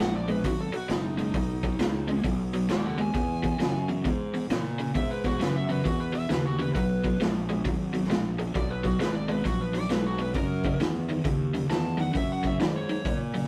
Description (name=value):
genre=blues rock power trio and southern rock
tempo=133 BPM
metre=4/4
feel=swing 64% on 8ths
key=B major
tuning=A4 = 442 Hz
part: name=overdriven slide guitar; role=melody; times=0.0-13.2 s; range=D#4 to A5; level=-36 LUFS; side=equal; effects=none
part: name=overdriven electric guitar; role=riff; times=0.0-13.5 s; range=E2 to G#3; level=-32 LUFS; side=equal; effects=none
part: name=fuzz fingered electric bass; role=bass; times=0.0-13.5 s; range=F#1 to A#2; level=-33 LUFS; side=equal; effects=overdrive
part: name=raw garage drum kit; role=drums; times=0.0-13.5 s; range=hi-hat, kick drum, snare drum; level=-34 LUFS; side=equal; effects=none
room=light reverb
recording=rough rehearsal-room recording, tube saturation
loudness=-28 LUFS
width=mono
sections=0.0-13.5 A section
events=none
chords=0.0 B; 3.1 E; 6.8 B5; 10.4 F#